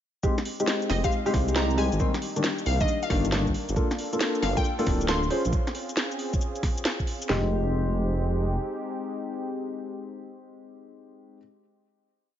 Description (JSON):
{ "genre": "UK garage, two-step garage", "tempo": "136 BPM", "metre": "4/4", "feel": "swing 66% on 16ths", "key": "F dorian", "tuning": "A4 = 440 Hz", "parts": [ { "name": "warm analog pad", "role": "sustained chords", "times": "0.6-11.4 s", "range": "Ab3 to A4", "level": "-36 LUFS", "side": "equal", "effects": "chorus, sidechain pumping" }, { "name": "dark baby grand piano", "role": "stabs", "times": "0.2-11.4 s", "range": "Eb3 to C5", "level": "-29 LUFS", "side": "left 2 dB", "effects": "dub echo" }, { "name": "garage drum kit", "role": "drums", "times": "0.2-7.4 s", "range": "kick drum, snare drum, toms", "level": "-28 LUFS", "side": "right 1 dB", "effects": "studio reverb" }, { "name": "garage drum kit", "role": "drums", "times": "0.2-7.3 s", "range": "cabasa, hi-hat, snare drum", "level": "-31 LUFS", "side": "equal", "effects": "studio reverb" }, { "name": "glassy wavetable pluck", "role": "melody", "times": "0.9-5.3 s", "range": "Eb5 to C6", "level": "-32 LUFS", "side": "left 2 dB", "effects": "chorus, dub echo" }, { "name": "dark detuned saw bass", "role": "bass", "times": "0.9-8.6 s", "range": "D1 to C2", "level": "-27 LUFS", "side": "right 1 dB", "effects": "tube saturation" } ], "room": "digital ambience", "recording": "nothing above 7.5 kHz", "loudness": "-24 LUFS", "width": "side -10 dB against mid", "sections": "0.2-7.3 drop; 7.3-10.8 final chord", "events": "drop 0.2-7.3", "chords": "0.2 Fm7; 2.0 Cm7; 3.5 Gm7; 5.3 Bbm7 (rootless); 7.3 Fm7" }